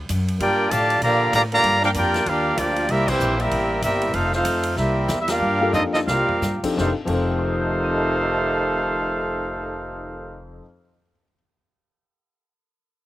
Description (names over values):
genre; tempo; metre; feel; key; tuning
jazz, big band swing; 165-193 BPM; 4/4; swing 61% on 8ths; F mixolydian from 5.4 s; A4 = 440 Hz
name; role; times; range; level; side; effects
upright bass; bass; 0.0-10.6 s; F1 to Bb2; -27 LUFS; equal; none
swinging big-band drum kit; drums; 0.1-7.2 s; crash cymbal, hi-hat, kick drum, ride cymbal, snare drum, toms; -32 LUFS; equal; none
clear trumpet section; melody; 0.4-10.5 s; Bb3 to D6; -21 LUFS; equal; slapback echo
dark trombone section; second line; 0.4-10.4 s; F2 to G4; -25 LUFS; right 2 dB; none
warm baby grand piano; accompaniment; 5.6-11.4 s; F2 to Eb7; -27 LUFS; left 3 dB; none
room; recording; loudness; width
little or no reverb; recorded outdoors, with no room sound; -18 LUFS; side -15 dB against mid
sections
0.0-5.4 A section; 5.4-6.8 B section; 6.8-9.7 C section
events
band accent 3.0, 5.2; slowing down 4.1-6.8; drum fill 4.8-5.4, 5.7-6.4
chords
0.4 Gm7; 2.9 C7; 4.1 F7; 4.8 C7; 5.4 Gm7; 6.1 C7sus4; 6.8 F9